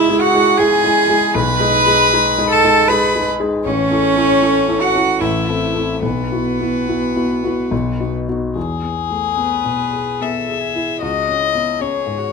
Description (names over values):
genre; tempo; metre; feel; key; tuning
classical, slow romantic movement for piano trio; 70-80 BPM; 3/4; rubato; E major; A4 = 440 Hz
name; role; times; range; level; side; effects
warm violin; melody; 0.0-12.3 s; G#4 to B5; -20 LUFS; left 10 dB; none
clear cello; second line; 0.0-12.3 s; B3 to B4; -17 LUFS; right 6 dB; none
dark concert grand piano; accompaniment; 0.0-12.3 s; A1 to A4; -19 LUFS; left 2 dB; none
room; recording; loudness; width
light reverb; close, detailed microphones; -14 LUFS; side -4 dB against mid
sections
0.0-8.6 A section; 8.6-12.3 B section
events
none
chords
0.0 C#m; 1.3 G#m/B; 3.6 A; 5.2 Am; 6.0 Bsus4; 7.7 B; 8.6 E; 11.0 C#m